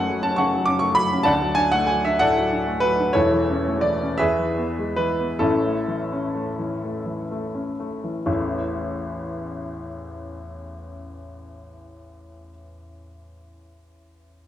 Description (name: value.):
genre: classical, romantic character piece for solo piano.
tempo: 40-70 BPM (dotted quarters).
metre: 6/8.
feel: rubato.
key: A major.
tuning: A4 = 440 Hz.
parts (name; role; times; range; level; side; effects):
warm baby grand piano; solo; 0.0-14.5 s; E1 to D6; -21 LUFS; equal; none.
room: wet recital hall reverb, RT60 1.4 s.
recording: none.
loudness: -20 LUFS.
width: side -11 dB against mid.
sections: 0.0-8.3 A section; 8.3-13.6 B section.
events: slowing down 2.2-8.3.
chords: 0.0 F#m; 1.3 D; 3.2 A/E; 4.2 E; 5.4 A.